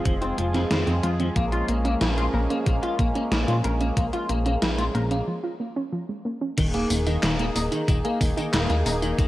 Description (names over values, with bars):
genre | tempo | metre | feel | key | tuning
synthwave | 92 BPM | 4/4 | straight | unclear | A4 = 440 Hz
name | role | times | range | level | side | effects
warm analog pad | sustained chords | 0.0-9.3 s | F3 to Ab4 | -29 LUFS | equal | chorus, sidechain pumping, cassette tape
soft round pluck | arpeggios | 0.0-9.3 s | Eb3 to Ab4 | -30 LUFS | right 2 dB | chorus, cassette tape, analog delay
clean electric guitar | riff | 0.1-9.3 s | Eb3 to Bb4 | -29 LUFS | left 2 dB | ensemble chorus, cassette tape, analog delay
chorused synth bass | bass | 0.1-9.3 s | Eb1 to Bb2 | -26 LUFS | equal | sidechain pumping
electronic kick drum | drums | 0.1-9.3 s | none | -24 LUFS | equal | overdrive, cassette tape
gated 80s digital drum machine | drums | 0.1-9.3 s | crash cymbal, handclaps, hi-hat, snare drum, tambourine | -29 LUFS | equal | gated reverb, gated reverb snare, overdrive, cassette tape
room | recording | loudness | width
light reverb, digital ambience | home recording on cassette | -22 LUFS | side -16 dB against mid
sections
0.0-6.6 A section; 6.6-9.3 B section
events
break 5.3-6.6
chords
0.0 Fm7; 1.4 Bbm7; 6.6 Ebsus4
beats
0.06 0.71 | 1.36 2.01 2.67 3.32 | 3.97 4.62 5.28 5.93 | 6.58 7.23 7.88 8.54 | 9.19